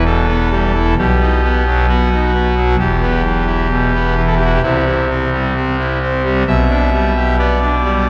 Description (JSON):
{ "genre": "classical, chorale-style piece for pipe organ", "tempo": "65 BPM", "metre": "4/4", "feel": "rubato", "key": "E minor", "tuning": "A4 = 439 Hz", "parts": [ { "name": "pipe organ, trumpet", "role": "solo", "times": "0.0-8.1 s", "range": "E1 to E5", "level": "-15 LUFS", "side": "equal", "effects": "none" } ], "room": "wet church reverb, RT60 3.8 s", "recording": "dark, warm production", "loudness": "-15 LUFS", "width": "mono", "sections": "0.0-8.1 A section", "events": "none", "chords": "0.0 Em; 1.0 B; 2.8 Em; 4.6 C; 6.5 G/B", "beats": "0.07 0.98 1.88 | 2.79 3.70 4.62 5.55 | 6.47 7.38" }